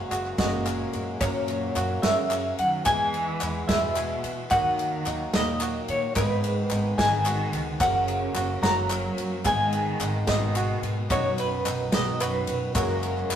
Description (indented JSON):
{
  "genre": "indie folk with a building arrangement",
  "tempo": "73 BPM (dotted quarters)",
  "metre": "6/8",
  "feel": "straight",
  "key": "F# mixolydian",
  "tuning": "A4 = 439 Hz",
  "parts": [
    { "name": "semi-hollow electric guitar", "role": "melody", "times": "0.0-13.4 s", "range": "A#4 to A#5", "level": "-27 LUFS", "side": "equal", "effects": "tremolo" },
    { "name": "clear upright piano", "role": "accompaniment", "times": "0.0-13.4 s", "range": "F#1 to E5", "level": "-35 LUFS", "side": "equal", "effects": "none" },
    { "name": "picked twelve-string acoustic guitar", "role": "accompaniment", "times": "0.0-13.4 s", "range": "G#2 to B4", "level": "-38 LUFS", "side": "left 2 dB", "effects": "none" },
    { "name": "hand-pumped harmonium", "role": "sustained chords", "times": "0.0-13.4 s", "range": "C#3 to F#4", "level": "-36 LUFS", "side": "left 1 dB", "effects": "none" },
    { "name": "bluegrass banjo", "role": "arpeggios", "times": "0.0-13.4 s", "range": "D#4 to A#4", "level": "-36 LUFS", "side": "right 3 dB", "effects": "none" },
    { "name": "upright bass", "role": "bass", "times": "0.1-13.4 s", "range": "F#1 to F#3", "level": "-32 LUFS", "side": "equal", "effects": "none" },
    { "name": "natural country drum kit", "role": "drums", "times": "0.1-13.4 s", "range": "kick drum, ride cymbal, snare drum", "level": "-31 LUFS", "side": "right 1 dB", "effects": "none" },
    { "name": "group handclap", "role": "percussion", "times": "0.1-13.4 s", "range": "none", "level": "-36 LUFS", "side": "left 3 dB", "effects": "none" },
    { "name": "warm cello", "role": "second line", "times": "0.4-13.4 s", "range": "F#2 to F#3", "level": "-32 LUFS", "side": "right 2 dB", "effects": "none" }
  ],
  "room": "moderate stone room reverb, RT60 1.2 s",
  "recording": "rough rehearsal-room recording",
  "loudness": "-23 LUFS",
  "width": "side -9 dB against mid",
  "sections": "0.0-1.2 A section; 1.2-13.4 A section",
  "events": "none",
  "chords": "0.0 F#add9; 1.2 F#; 2.9 E; 4.5 D#m; 6.2 G#m; 7.8 F#; 9.5 G#m; 11.1 B; 12.7 F#add9"
}